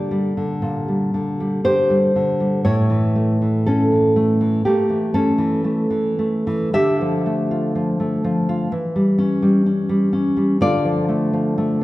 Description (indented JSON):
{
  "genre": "romantic piece for solo classical guitar",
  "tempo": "51-64 BPM",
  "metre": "4/4",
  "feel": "rubato",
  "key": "D minor",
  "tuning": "A4 = 439 Hz",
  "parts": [
    { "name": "nylon-string guitar", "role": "solo", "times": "0.0-11.8 s", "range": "A2 to E5", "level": "-16 LUFS", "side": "equal", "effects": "none" }
  ],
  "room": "wet recital hall reverb, RT60 1.4 s",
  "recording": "none",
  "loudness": "-16 LUFS",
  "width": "side -17 dB against mid",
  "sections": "0.0-11.8 A section",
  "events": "none",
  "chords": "0.0 Gm/Bb; 2.6 A; 6.7 Dm; 8.7 C#dim/E; 10.6 Dm",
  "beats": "0.61 1.64 | 2.64 3.66 4.64 5.62 | 6.73 7.74 8.71 9.66 | 10.61 11.58"
}